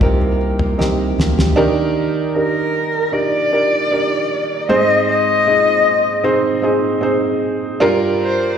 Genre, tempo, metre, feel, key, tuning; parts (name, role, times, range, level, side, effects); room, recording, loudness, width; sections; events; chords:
pop ballad; 77 BPM; 4/4; straight; Eb major; A4 = 440 Hz
dark upright piano; accompaniment; 0.0-8.6 s; G2 to Eb5; -17 LUFS; right 2 dB; slapback echo
nylon-string guitar; arpeggios; 0.0-2.1 s; C3 to G4; -23 LUFS; right 1 dB; slapback echo, ping-pong delay
saturated sub bass; bass; 0.0-1.5 s; C2 to D2; -18 LUFS; equal
damped 70s drum kit; drums; 0.0-1.6 s; kick drum, snare drum, toms; -19 LUFS; left 1 dB
warm cello; melody; 2.4-8.6 s; Bb4 to Eb5; -16 LUFS; left 3 dB; slapback echo
light reverb, small room ambience; live gig heard through the venue's PA, recital hall reverb; -14 LUFS; side -8 dB against mid
0.0-1.6 A section; 1.6-8.6 B section
drum fill 0.8-1.6
0.0 Cm7; 1.6 Ebmaj7; 4.7 Ab; 7.8 Gm7